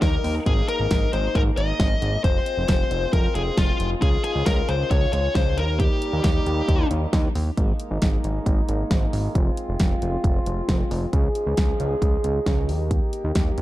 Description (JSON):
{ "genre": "synth-pop", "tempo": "135 BPM", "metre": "4/4", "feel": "straight", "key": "Ab major", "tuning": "A4 = 441 Hz", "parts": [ { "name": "smooth overdriven lead guitar", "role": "melody", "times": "0.0-6.9 s", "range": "F4 to Eb5", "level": "-26 LUFS", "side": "left 4 dB", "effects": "tape echo" }, { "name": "warm brass ensemble", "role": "sustained chords", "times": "0.0-13.6 s", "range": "Eb3 to Ab4", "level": "-29 LUFS", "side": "equal", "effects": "none" }, { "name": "fat analog bass", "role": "bass", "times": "0.0-13.6 s", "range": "F1 to Eb2", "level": "-24 LUFS", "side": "equal", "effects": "none" }, { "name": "pop drum kit", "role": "drums", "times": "0.0-13.6 s", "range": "hi-hat, kick drum, snare drum", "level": "-22 LUFS", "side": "equal", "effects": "none" } ], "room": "light reverb, digital ambience", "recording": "dark, warm production", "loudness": "-20 LUFS", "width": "side -15 dB against mid", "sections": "0.0-7.6 A section; 7.6-13.6 B section", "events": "none", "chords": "0.5 Absus2; 2.2 Fm; 4.0 Dbadd9; 5.6 Eb; 7.6 Absus2; 9.4 Fm; 11.1 Dbadd9; 12.7 Eb", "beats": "0.02 | 0.46 0.91 1.35 1.80 | 2.24 2.69 3.13 3.58 | 4.02 4.46 4.91 5.35 | 5.80 6.24 6.69 7.13 | 7.58 8.02 8.46 8.91 | 9.35 9.80 10.24 10.69 | 11.13 11.57 12.02 12.46 | 12.91 13.35" }